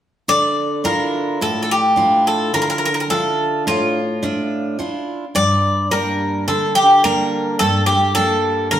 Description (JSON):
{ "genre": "greek folk", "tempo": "107 BPM (eighths)", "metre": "9/8", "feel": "straight", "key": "D minor", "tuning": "A4 = 440 Hz", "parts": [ { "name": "Greek bouzouki", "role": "melody", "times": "0.3-8.8 s", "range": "F4 to D5", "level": "-16 LUFS", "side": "equal", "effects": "none" }, { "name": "picked steel-string acoustic guitar", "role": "accompaniment", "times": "0.3-8.8 s", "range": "G2 to E5", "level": "-20 LUFS", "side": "right 1 dB", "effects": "none" } ], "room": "wet stone room reverb, RT60 1.3 s", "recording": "band playing live in one room", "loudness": "-15 LUFS", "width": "side -10 dB against mid", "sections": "0.3-8.8 A section", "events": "none", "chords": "0.3 Dmadd9; 5.4 Gm", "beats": "| 0.28 0.84 1.41 1.97 2.54 3.10 3.66 4.23 4.79 | 5.35 5.91 6.47 7.04 7.60 8.16 8.72" }